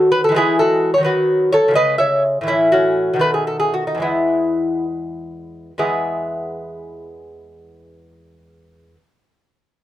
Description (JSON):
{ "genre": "classical, baroque-style dance for lute", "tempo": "64-87 BPM (dotted quarters)", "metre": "6/8", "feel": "rubato", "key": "E major", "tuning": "A4 = 443 Hz", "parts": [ { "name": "lute", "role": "solo", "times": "0.0-9.0 s", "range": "E2 to E5", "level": "-16 LUFS", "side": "equal", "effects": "none" } ], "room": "moderate booth ambience, RT60 0.3 s", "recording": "none", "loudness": "-15 LUFS", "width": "side -13 dB against mid", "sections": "0.0-5.8 A section; 5.8-9.4 B section", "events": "slowing down 1.8-5.8", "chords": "0.4 E; 1.1 B/D#; 1.8 C#m; 2.5 F#m7/A; 3.2 B7; 4.0 E" }